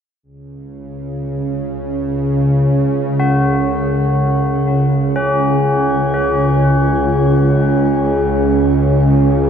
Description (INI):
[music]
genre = dark ambient drone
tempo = free time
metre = none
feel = none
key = unclear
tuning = A4 = 440 Hz
[part]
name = bowed-like drone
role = drone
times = 0.8-9.5 s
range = C#2 to C#3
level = -14 LUFS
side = equal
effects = built-in reverb
[part]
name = dark analog pad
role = sustained chords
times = 0.9-9.5 s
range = C#4 to C#5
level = -26 LUFS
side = right 1 dB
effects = none
[part]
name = tubular bells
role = arpeggios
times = 3.2-9.5 s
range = C#4 to F#4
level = -19 LUFS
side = left 2 dB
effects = ping-pong delay, shimmer reverb
[sound]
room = wet cathedral reverb, RT60 5.7 s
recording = dark, warm production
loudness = -13 LUFS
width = side -8 dB against mid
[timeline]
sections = 0.3-9.5 A section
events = none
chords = 0.3 F#sus2/C#